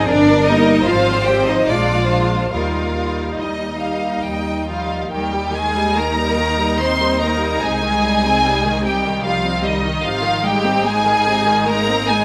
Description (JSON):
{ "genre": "classical, slow romantic movement for string orchestra", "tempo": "68-76 BPM", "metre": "3/4", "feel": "rubato", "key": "Eb major", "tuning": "A4 = 444 Hz", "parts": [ { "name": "rich symphonic violin section", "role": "melody", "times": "0.0-12.2 s", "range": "D5 to C6", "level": "-24 LUFS", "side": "equal", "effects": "none" }, { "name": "rich chamber violin section", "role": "second line", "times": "0.0-12.2 s", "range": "Eb4 to G5", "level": "-24 LUFS", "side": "equal", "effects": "none" }, { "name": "rich chamber viola section", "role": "accompaniment", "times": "0.0-12.2 s", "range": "C3 to Eb4", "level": "-24 LUFS", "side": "equal", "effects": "none" }, { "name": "rich chamber cello section", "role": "bass", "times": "0.0-12.2 s", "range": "Eb3 to G4", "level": "-24 LUFS", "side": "equal", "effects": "none" }, { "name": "warm chamber double bass section", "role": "bass", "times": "0.1-12.2 s", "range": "G1 to Eb2", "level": "-26 LUFS", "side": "equal", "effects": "none" } ], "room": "moderate recital hall reverb, RT60 1.7 s", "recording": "none", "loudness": "-17 LUFS", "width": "mono", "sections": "0.0-5.1 A section; 5.1-12.2 B section", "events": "none", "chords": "0.1 Eb/G; 0.9 Fm/Ab; 1.7 Bb7; 2.5 Eb; 7.6 Cm; 10.0 Ab" }